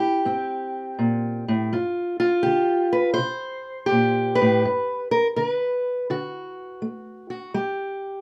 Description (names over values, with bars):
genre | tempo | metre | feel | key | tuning
acoustic country blues, solo or duo | 82 BPM | 4/4 | swing 67% on 8ths | G mixolydian | A4 = 440 Hz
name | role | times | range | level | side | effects
fingerpicked steel-string acoustic guitar | solo | 0.0-8.2 s | G2 to C5 | -24 LUFS | equal | none
room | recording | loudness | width
light reverb | none | -23 LUFS | mono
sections
0.0-7.6 A section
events
none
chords
0.0 C7(no3); 1.7 G5; 3.2 C5; 4.6 G; 6.1 D; 7.6 N.C.